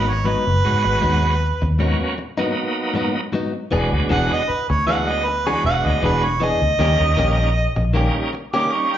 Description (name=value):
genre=blues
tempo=78 BPM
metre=4/4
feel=swing 54% on 16ths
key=G# minor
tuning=A4 = 439 Hz
part: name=mellow harmonica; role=second line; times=0.0-9.0 s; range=B4 to D6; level=-21 LUFS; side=right 2 dB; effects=slapback echo
part: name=bright tonewheel organ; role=accompaniment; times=0.0-9.0 s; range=F#3 to F#4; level=-25 LUFS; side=right 2 dB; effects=slow rotary speaker, overdrive, slapback echo
part: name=direct-recorded clean electric guitar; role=stabs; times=0.0-8.8 s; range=G#2 to G#4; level=-25 LUFS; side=left 4 dB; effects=slapback echo
part: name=vintage muted fingered electric bass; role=bass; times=0.0-8.1 s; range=E1 to G#2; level=-20 LUFS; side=equal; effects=none
room=light reverb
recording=live gig heard through the venue's PA, club reverb, nothing above 7.5 kHz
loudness=-17 LUFS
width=side -11 dB against mid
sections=0.0-9.0 A section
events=harmonica solo 0.0-9.0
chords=0.0 G#m7; 3.7 E7; 6.8 D#7